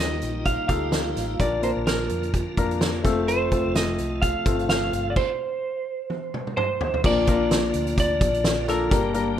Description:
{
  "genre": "piano-driven pop",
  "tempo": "128 BPM",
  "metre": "4/4",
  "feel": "swing 56% on 16ths",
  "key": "Bb major",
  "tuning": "A4 = 438 Hz",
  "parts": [
    { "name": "lightly driven lead guitar", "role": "melody", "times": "0.0-9.4 s", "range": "Bb4 to F5", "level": "-26 LUFS", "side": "right 2 dB", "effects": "none" },
    { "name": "clear grand piano", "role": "accompaniment", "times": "0.0-9.4 s", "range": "G2 to Bb4", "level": "-26 LUFS", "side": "left 4 dB", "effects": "none" },
    { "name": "tonewheel organ", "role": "sustained chords", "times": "0.0-9.4 s", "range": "C3 to G4", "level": "-33 LUFS", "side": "right 1 dB", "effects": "chorus vibrato, fast rotary speaker" },
    { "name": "vintage muted fingered electric bass", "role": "bass", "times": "0.0-9.4 s", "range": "F1 to F2", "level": "-30 LUFS", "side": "equal", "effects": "none" },
    { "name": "loose indie drum kit", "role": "drums", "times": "0.2-9.3 s", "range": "crash cymbal, hi-hat, kick drum, snare drum, toms", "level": "-25 LUFS", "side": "equal", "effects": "none" }
  ],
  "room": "moderate plate reverb, RT60 1.4 s, studio ambience",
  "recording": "rough home demo mix",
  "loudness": "-21 LUFS",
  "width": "side -10 dB against mid",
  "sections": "0.0-7.0 A section; 7.0-9.4 B section",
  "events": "stop 5.2-7.0; drum fill 6.1-7.0",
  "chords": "0.0 Ebadd9; 1.4 Bb; 3.0 F; 7.0 Bb",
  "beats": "0.46 0.93 | 1.40 1.87 2.34 2.81 | 3.28 3.75 4.22 4.69 | 5.16 5.63 6.10 6.57 | 7.04 7.51 7.98 8.45 | 8.91 9.38"
}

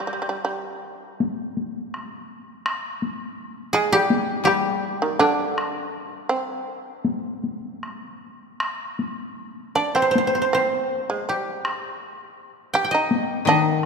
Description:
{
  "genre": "japanese traditional, Japanese chamber music",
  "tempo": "81 BPM",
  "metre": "4/4",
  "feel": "rubato",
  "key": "unclear",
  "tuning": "A4 = 440 Hz",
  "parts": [
    { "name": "koto", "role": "melody", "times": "0.0-13.9 s", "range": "D4 to G5", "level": "-23 LUFS", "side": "right 1 dB", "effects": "none" },
    { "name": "shamisen", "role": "second line", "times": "0.0-13.9 s", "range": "D3 to G4", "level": "-25 LUFS", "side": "right 2 dB", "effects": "none" },
    { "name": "koto", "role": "accompaniment", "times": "0.0-6.7, 13.5-13.9 s", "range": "Eb3 to G3", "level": "-26 LUFS", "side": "left 8 dB", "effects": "none" },
    { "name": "solo taiko drums", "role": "percussion", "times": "1.2-13.9 s", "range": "none", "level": "-28 LUFS", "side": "left 3 dB", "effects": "none" }
  ],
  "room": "wet church reverb, RT60 2.9 s",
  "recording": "minimal, uncompressed stereo recording",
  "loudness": "-21 LUFS",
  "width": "side -5 dB against mid",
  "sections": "0.0-13.9 A section",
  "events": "none",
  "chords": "none",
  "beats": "0.45 1.19 1.92 | 2.65 3.38 4.10 4.82 | 5.56 6.29 7.04 7.82 | 8.60 9.37 10.14 10.89 | 11.64 12.38 13.11 13.83"
}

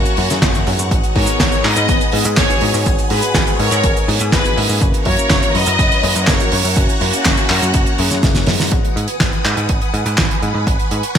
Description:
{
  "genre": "italo disco",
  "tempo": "123 BPM",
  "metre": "4/4",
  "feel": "straight",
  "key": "G# minor",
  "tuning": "A4 = 441 Hz",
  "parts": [
    { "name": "warm symphonic violin section", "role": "melody", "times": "0.0-8.5 s", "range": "C#4 to D#5", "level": "-19 LUFS", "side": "equal", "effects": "ping-pong delay" },
    { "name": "phased string machine", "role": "sustained chords", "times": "0.0-11.2 s", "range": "B3 to D#6", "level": "-23 LUFS", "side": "equal", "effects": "ensemble chorus, phaser" },
    { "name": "dark grand piano", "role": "stabs", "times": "0.0-8.9 s", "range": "G#2 to A#5", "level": "-24 LUFS", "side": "left 6 dB", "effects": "lush chorus" },
    { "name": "picked electric bass", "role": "bass", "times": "0.0-11.2 s", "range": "F#1 to G#2", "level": "-20 LUFS", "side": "equal", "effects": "none" },
    { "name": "damped 70s drum kit", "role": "drums", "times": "0.1-11.2 s", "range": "cabasa, handclaps, hi-hat, snare drum", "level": "-18 LUFS", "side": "right 2 dB", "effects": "gated reverb" },
    { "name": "electronic kick drum", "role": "drums", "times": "0.4-11.2 s", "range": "none", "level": "-18 LUFS", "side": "equal", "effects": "overdrive" }
  ],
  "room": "light reverb, studio reverb",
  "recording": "bright 1980s-style digital production",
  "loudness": "-13 LUFS",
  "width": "side -8 dB against mid",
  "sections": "0.0-8.7 A section; 8.7-11.2 B section",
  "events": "drum fill 8.2-8.7",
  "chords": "0.0 F#7; 0.9 G#m7; 4.8 F#7; 8.7 G#m7",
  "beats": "0.42 | 0.91 1.40 1.89 2.38 | 2.86 3.35 3.84 4.33 | 4.81 5.30 5.79 6.28 | 6.77 7.25 7.74 8.23 | 8.72 9.21 9.69 10.18 | 10.67 11.16"
}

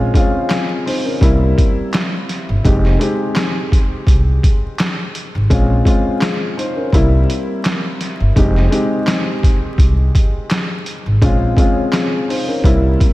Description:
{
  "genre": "hip hop, boom-bap hip-hop",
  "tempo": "84 BPM",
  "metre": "4/4",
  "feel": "swing 55% on 16ths",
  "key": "F minor",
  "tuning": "A4 = 441 Hz",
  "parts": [
    { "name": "dark upright piano", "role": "accompaniment", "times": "0.0-13.1 s", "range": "G3 to C5", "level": "-18 LUFS", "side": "left 1 dB", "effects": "cassette tape" },
    { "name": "upright bass", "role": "bass", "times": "0.0-12.9 s", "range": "F1 to C2", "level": "-14 LUFS", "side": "equal", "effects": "none" },
    { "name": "trip hop sampler-style drum kit", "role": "drums", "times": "0.1-13.1 s", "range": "handclaps, hi-hat, kick drum, snare drum", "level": "-16 LUFS", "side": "equal", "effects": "none" }
  ],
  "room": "light reverb, studio ambience",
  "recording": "vinyl crackle",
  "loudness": "-13 LUFS",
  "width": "side -17 dB against mid",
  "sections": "0.0-13.1 A section",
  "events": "none",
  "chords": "0.0 Bbm7; 1.2 C7; 2.6 Fm9 (rootless); 5.5 Bbm7; 6.9 C7; 8.4 Fm9 (rootless); 11.2 Bbm7",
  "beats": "0.50 1.22 1.93 | 2.65 3.36 4.07 4.79 | 5.50 6.22 6.93 7.64 | 8.36 9.07 9.79 10.50 | 11.22 11.93 12.64"
}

